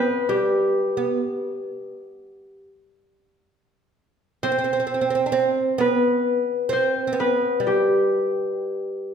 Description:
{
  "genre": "Turkish makam ensemble",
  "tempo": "131 BPM (eighths)",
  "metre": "10/8",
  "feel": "straight",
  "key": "unclear",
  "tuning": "A4 = 441 Hz",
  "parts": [
    { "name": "concert harp", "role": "melody", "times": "0.0-9.1 s", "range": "G4 to D5", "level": "-22 LUFS", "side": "left 2 dB", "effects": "none" },
    { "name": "oud", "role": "second line", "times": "0.0-9.1 s", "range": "G3 to D4", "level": "-25 LUFS", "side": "right 5 dB", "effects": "none" }
  ],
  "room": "wet recital hall reverb, RT60 1.6 s",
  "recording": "minimal, uncompressed stereo recording",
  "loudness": "-20 LUFS",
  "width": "side -7 dB against mid",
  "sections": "0.0-9.1 A section",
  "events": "none",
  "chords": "none"
}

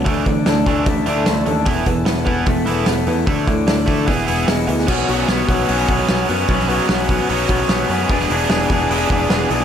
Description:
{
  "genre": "indie rock",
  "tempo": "149 BPM",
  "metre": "4/4",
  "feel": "straight",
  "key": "unclear",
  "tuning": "A4 = 439 Hz",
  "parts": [
    { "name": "chorused pulse-width pad", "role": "sustained chords", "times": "0.0-9.6 s", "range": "E4 to B5", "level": "-30 LUFS", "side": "equal", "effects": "none" },
    { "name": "biting overdriven guitar", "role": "riff", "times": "0.0-9.6 s", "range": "E3 to A4", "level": "-21 LUFS", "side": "right 6 dB", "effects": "wide subtle chorus, analog delay" },
    { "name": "electric guitar through a small old amp", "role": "riff", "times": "0.0-9.6 s", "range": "E2 to G#4", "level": "-20 LUFS", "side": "left 7 dB", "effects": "lush chorus" },
    { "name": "picked electric bass", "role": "bass", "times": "0.0-9.6 s", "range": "E1 to F#2", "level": "-23 LUFS", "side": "equal", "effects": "none" },
    { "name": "loose indie drum kit", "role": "drums", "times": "0.1-9.6 s", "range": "crash cymbal, hi-hat, kick drum, snare drum", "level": "-20 LUFS", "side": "equal", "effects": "none" }
  ],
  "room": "light reverb",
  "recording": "none",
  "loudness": "-15 LUFS",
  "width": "side -8 dB against mid",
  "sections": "0.0-4.9 A section; 4.9-9.6 B section",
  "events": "none",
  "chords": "0.1 Dsus2; 1.7 Esus4; 3.3 Dsus2; 4.1 E; 4.9 Bsus2; 8.1 E7"
}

